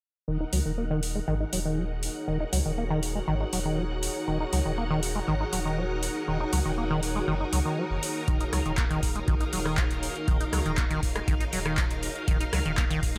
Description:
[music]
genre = acid house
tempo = 120 BPM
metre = 4/4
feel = straight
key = Eb minor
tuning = A4 = 440 Hz
[part]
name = string machine, full ensemble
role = sustained chords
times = 0.3-13.2 s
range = Eb4 to Gb5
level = -38 LUFS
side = equal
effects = ensemble chorus, sidechain pumping
[part]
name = acid bass, saw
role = riff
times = 0.3-13.2 s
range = Eb3 to Eb4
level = -33 LUFS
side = equal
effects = vintage 12-bit sampler grit, sidechain pumping, delay
[part]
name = warm sub bass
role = bass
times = 0.3-13.2 s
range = Eb1 to Db2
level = -34 LUFS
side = equal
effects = sidechain pumping
[part]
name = ethereal airy pad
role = texture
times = 1.3-13.2 s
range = Eb4 to Db5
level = -39 LUFS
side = equal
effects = ensemble chorus, built-in reverb, tremolo, sidechain pumping
[part]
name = electro analog drum machine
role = drums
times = 0.5-13.2 s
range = handclaps, hi-hat, rim click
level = -36 LUFS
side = equal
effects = none
[part]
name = electronic kick drum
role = drums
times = 8.3-13.1 s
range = none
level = -29 LUFS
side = equal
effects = none
[sound]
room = little or no reverb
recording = none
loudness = -28 LUFS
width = mono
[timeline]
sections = 0.3-13.2 A section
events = filter sweep on acid bass 0.3-13.2; filter sweep on sub bass 0.3-13.2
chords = 0.3 Ebm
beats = | 0.28 0.78 1.28 1.78 | 2.28 2.78 3.28 3.78 | 4.28 4.78 5.28 5.78 | 6.28 6.78 7.28 7.78 | 8.28 8.78 9.28 9.78 | 10.28 10.78 11.28 11.78 | 12.28 12.78

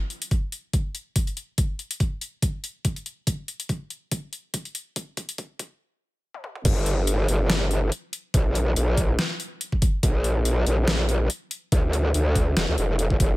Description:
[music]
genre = heavy wobble dubstep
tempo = 142 BPM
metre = 4/4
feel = swing 55% on 16ths, half-time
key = G minor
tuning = A4 = 439 Hz
[part]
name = dubstep drum kit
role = drums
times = 0.1-13.3 s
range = crash cymbal, hi-hat, snare drum, toms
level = -28 LUFS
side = left 1 dB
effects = overdrive, high-pass filter on hats, high-pass filter on snare, high-pass filter on toms, high-pass filter on cymbals
[part]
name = electronic kick drum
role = drums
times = 0.3-13.3 s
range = none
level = -23 LUFS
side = equal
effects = overdrive
[part]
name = growl bass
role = bass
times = 6.7-13.4 s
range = F1 to D2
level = -22 LUFS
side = equal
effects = chorus, overdrive
[sound]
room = little or no reverb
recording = high-pass filter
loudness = -22 LUFS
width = side -19 dB against mid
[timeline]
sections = 0.0-6.7 A section; 6.7-13.4 B section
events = build-up 0.0-6.7; filter sweep 0.0-6.7; drum fill 3.3-5.8, 6.3-6.7; stop 5.8-6.7; drop 6.7-13.4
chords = none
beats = 0.31 0.73 1.16 | 1.58 2.00 2.43 2.85 | 3.27 3.69 4.12 4.54 | 4.96 5.38 5.81 6.23 | 6.65 7.07 7.50 7.92 | 8.34 8.76 9.19 9.61 | 10.03 10.45 10.88 11.30 | 11.72 12.14 12.57 12.99

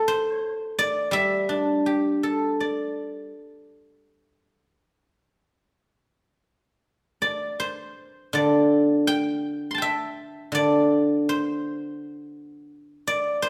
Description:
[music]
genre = chinese traditional, Chinese solo plucked strings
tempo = 72-87 BPM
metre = 4/4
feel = rubato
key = G zhi mode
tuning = A4 = 440 Hz
[part]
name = guzheng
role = solo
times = 0.0-13.5 s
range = D3 to C6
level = -24 LUFS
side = equal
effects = none
[sound]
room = moderate recital hall reverb, RT60 1.4 s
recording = recorded in a church or concert hall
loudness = -24 LUFS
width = mono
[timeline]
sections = 0.0-6.1 A section; 6.1-13.5 B section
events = none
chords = none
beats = | 0.09 0.78 1.50 2.23 | 2.95 3.69 4.46 5.25 | 6.06 6.83 7.60 8.35 | 9.08 9.81 10.54 11.27 | 12.00 12.72 13.43

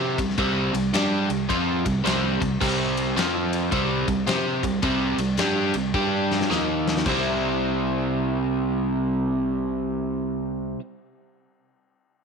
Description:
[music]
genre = blues rock power trio and southern rock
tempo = 108 BPM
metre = 4/4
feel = swing 64% on 8ths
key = C major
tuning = A4 = 441 Hz
[part]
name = overdriven electric guitar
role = riff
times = 0.0-10.8 s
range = C3 to C5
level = -23 LUFS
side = right 1 dB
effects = none
[part]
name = growling fingered electric bass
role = bass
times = 0.0-10.7 s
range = C2 to C3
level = -30 LUFS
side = equal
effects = overdrive
[part]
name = big rock drum kit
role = drums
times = 0.2-7.2 s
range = crash cymbal, kick drum, ride cymbal, snare drum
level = -29 LUFS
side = left 3 dB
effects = none
[sound]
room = light reverb, small room ambience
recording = 1960s-style stereo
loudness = -21 LUFS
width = side -5 dB against mid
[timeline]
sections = 0.0-7.1 A section; 7.1-9.3 B section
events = drum fill 5.9-7.1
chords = 0.0 C5; 3.2 F5; 3.7 C5; 5.9 G5; 6.5 Eb5; 7.1 C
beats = | 0.39 0.94 1.50 2.06 | 2.61 3.17 3.72 4.28 | 4.84 5.39 5.95 6.50 | 7.06 7.62 8.17 8.73

